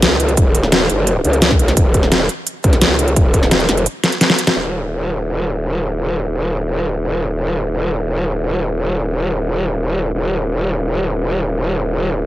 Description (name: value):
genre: dark technical drum and bass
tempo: 172 BPM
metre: 4/4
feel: straight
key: Eb minor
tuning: A4 = 440 Hz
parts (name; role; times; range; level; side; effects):
- growl bass; bass; 0.0-12.3 s; Eb1 to Db2; -16 LUFS; equal; chorus, overdrive, sidechain pumping
- dubstep drum kit; drums; 0.0-4.5 s; hi-hat, snare drum; -15 LUFS; equal; small room reverb
- electronic kick drum; drums; 0.4-3.4 s; none; -14 LUFS; equal; small room reverb
room: little or no reverb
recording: none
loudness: -14 LUFS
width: side -15 dB against mid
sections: 0.0-4.6 A section; 4.6-12.3 B section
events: drum fill 4.0-4.6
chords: none